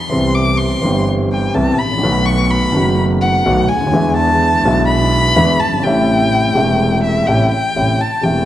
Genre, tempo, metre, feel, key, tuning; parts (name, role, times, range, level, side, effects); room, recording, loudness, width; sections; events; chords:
tango; 126 BPM; 4/4; rubato; A minor; A4 = 441 Hz
warm violin; second line; 0.0-8.5 s; E5 to D6; -17 LUFS; left 1 dB
dark baby grand piano; accompaniment; 0.1-8.5 s; E1 to G4; -15 LUFS; left 1 dB
rich double bass; bass; 0.1-8.5 s; E1 to E2; -19 LUFS; right 2 dB
moderate concert hall reverb, RT60 2.3 s; dark, warm production; -12 LUFS; side -12 dB against mid
0.0-7.8 A section
violin solo 0.0-7.8
0.1 Cmaj7; 2.0 B7; 3.9 E7; 5.8 Am7